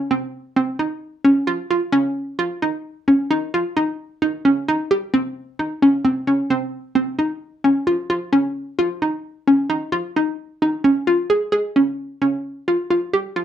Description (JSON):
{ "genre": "progressive instrumental, progressive", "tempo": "131 BPM", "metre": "7/4", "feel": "straight", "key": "unclear", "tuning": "A4 = 440 Hz", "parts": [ { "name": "hollow square pluck", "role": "solo", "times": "0.0-13.4 s", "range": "C4 to Ab4", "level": "-17 LUFS", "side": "equal", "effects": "chorus" } ], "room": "moderate small room reverb, RT60 0.6 s", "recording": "dark, warm production", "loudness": "-18 LUFS", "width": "side -10 dB against mid", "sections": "0.0-11.5 A section; 11.5-13.4 B section", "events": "none", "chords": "none" }